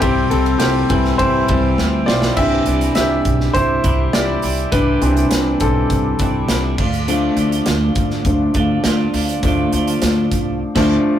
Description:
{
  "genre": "piano-driven pop",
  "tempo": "102 BPM",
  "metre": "4/4",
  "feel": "straight",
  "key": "C major",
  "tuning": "A4 = 440 Hz",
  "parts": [
    { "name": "clear baby grand piano", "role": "accompaniment", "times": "0.0-11.2 s", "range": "E3 to E5", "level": "-17 LUFS", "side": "left 1 dB", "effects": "none" },
    { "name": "breathy mellow flute section", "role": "sustained chords", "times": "0.0-11.2 s", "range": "G4 to E6", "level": "-32 LUFS", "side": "left 1 dB", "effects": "none" },
    { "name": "twelve-string electric guitar", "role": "riff", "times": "0.0-11.0 s", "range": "C3 to F4", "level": "-24 LUFS", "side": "right 3 dB", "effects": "none" },
    { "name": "upright bass", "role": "bass", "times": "0.0-11.0 s", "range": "B1 to D2", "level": "-20 LUFS", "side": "equal", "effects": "none" },
    { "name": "modern studio drum kit", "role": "drums", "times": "0.0-10.9 s", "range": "crash cymbal, hi-hat, kick drum, ride cymbal, snare drum", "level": "-21 LUFS", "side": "right 1 dB", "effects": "none" }
  ],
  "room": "moderate booth ambience, RT60 0.2 s",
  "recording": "rough rehearsal-room recording, warm saturation",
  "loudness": "-14 LUFS",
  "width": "side -10 dB against mid",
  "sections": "0.0-2.4 A section; 2.4-11.2 B section",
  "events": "grand piano solo 0.0-2.4, 2.4-11.2; drum fill 1.8-2.4; band accent 10.6-11.2",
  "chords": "0.0 C; 2.4 Cadd9; 6.8 Dm"
}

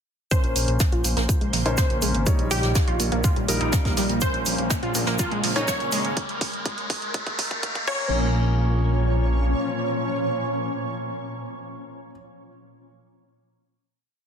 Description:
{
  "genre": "progressive house",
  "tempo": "123 BPM",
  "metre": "4/4",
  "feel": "straight",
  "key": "Bb dorian",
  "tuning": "A4 = 440 Hz",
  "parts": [
    { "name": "wide unison pluck", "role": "melody", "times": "0.3-12.1 s", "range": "G4 to Db5", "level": "-31 LUFS", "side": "equal", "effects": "sidechain pumping, dub echo" },
    { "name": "shimmering ambient pad", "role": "sustained chords", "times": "1.0-12.1 s", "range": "Bb2 to Db5", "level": "-30 LUFS", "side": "equal", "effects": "chorus, built-in reverb, sidechain pumping" },
    { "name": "wide unison pluck", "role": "arpeggios", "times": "0.3-8.3 s", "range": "F3 to F4", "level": "-30 LUFS", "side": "right 1 dB", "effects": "sidechain pumping, dub echo" },
    { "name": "warm grand piano", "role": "stabs", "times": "0.3-12.1 s", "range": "G3 to Db5", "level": "-31 LUFS", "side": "left 1 dB", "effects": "sidechain pumping, low-pass filter, dub echo" },
    { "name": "electronic kick drum", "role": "drums", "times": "0.3-8.0 s", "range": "none", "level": "-24 LUFS", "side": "equal", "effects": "none" },
    { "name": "jazz brush drum kit", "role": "drums", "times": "0.3-6.0 s", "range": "hi-hat, shaker, snare drum", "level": "-30 LUFS", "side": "right 1 dB", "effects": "high-pass filter on hats, soft clipping on snare, high-pass filter on snare, high-pass filter on perc, high-pass filter on room" },
    { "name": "pop drum kit", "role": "drums", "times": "0.3-8.0 s", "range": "crash cymbal, hi-hat", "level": "-29 LUFS", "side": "right 2 dB", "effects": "none" },
    { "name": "riser", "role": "sound effects", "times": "3.0-8.1 s", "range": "none", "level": "-33 LUFS", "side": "left 1 dB", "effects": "none" },
    { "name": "fat analog bass", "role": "bass", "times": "0.4-9.5 s", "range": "Ab1 to Bb1", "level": "-24 LUFS", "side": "equal", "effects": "sidechain pumping" }
  ],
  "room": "light reverb, small room ambience",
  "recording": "dense, heavily limited modern master, high-pass filter",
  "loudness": "-21 LUFS",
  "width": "side -7 dB against mid",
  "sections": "0.3-8.1 build; 8.1-12.0 final hit",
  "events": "build-up 0.3-8.1; filter sweep on synth pluck 0.3-6.2; filter sweep 0.3-8.1; riser 3.0-8.1; drum fill 4.2-8.1",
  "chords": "0.3 Bbmadd9; 2.3 Eb/Bb; 4.2 Bbmadd9; 6.2 Ab5/Bb; 7.9 Bbm"
}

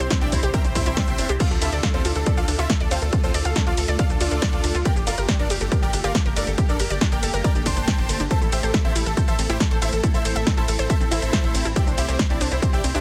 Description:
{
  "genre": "uplifting trance",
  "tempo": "139 BPM",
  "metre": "4/4",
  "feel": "straight",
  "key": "D minor",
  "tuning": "A4 = 442 Hz",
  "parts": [
    { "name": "supersaw chords", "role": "melody", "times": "0.0-13.0 s", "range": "C4 to C6", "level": "-31 LUFS", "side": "equal", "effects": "subtle chorus, sidechain pumping, dub echo" },
    { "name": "dark grand piano", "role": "second line", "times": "0.0-13.0 s", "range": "G4 to C6", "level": "-36 LUFS", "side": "equal", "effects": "sidechain pumping, dub echo" },
    { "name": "shimmering ambient pad", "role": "sustained chords", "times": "0.0-13.0 s", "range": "C3 to G4", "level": "-36 LUFS", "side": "equal", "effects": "chorus, built-in reverb, phaser, sidechain pumping" },
    { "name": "analog pluck", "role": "arpeggios", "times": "0.0-13.0 s", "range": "C4 to F5", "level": "-32 LUFS", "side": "equal", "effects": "chorus, sidechain pumping, dub echo" },
    { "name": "tight sequencer bass", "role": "bass", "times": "0.0-13.0 s", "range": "G1 to D2", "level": "-28 LUFS", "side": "equal", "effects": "sidechain pumping" },
    { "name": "punchy analog drum machine", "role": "drums", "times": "0.0-13.0 s", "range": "crash cymbal, hi-hat, ride cymbal, shaker, snare drum", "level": "-30 LUFS", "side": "equal", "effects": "sidechain pumping on hats, sidechain pumping on perc, sidechain pumping on cymbals" },
    { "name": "electronic kick drum", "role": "drums", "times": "0.1-12.7 s", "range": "none", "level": "-24 LUFS", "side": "equal", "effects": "none" }
  ],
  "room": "digital ambience",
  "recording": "heavily compressed radio sound",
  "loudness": "-21 LUFS",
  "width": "mono",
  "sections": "0.0-13.0 A section",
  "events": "none",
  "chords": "0.0 Cadd9; 1.4 Dm; 4.9 Gmadd9; 8.3 Am; 11.8 Cadd9"
}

